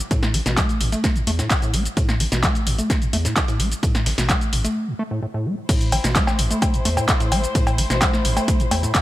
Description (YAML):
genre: acid house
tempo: 129 BPM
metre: 4/4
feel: straight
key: A minor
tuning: A4 = 440 Hz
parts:
  - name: punchy analog drum machine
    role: drums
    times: 0.0-9.0 s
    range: cowbell, crash cymbal, handclaps, hi-hat, shaker, snare drum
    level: -23 LUFS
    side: equal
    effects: none
  - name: deep acid bass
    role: riff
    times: 0.1-9.0 s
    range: G2 to A3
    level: -24 LUFS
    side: equal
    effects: overdrive, tape echo
  - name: dusty soul sampler-style drum kit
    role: drums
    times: 0.1-9.0 s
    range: ride cymbal, snare drum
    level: -34 LUFS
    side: right 4 dB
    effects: none
  - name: electronic kick drum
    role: drums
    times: 0.1-9.0 s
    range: none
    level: -21 LUFS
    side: equal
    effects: none
  - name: round analog bass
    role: bass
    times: 0.3-8.9 s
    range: A1 to E2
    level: -24 LUFS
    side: equal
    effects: tube saturation, sidechain pumping
  - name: muted chamber string section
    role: sustained chords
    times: 5.7-9.0 s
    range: A3 to C5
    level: -28 LUFS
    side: left 2 dB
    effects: sidechain pumping
room: little or no reverb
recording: none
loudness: -18 LUFS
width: side -15 dB against mid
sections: 0.0-5.7 A section; 5.7-9.0 B section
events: break 4.8-5.7; drop 5.7-9.0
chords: 0.0 A5; 5.7 Am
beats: | 0.11 0.57 1.04 1.50 | 1.97 2.43 2.90 3.37 | 3.83 4.29 4.76 5.22 | 5.69 6.16 6.62 7.09 | 7.55 8.02 8.48 8.95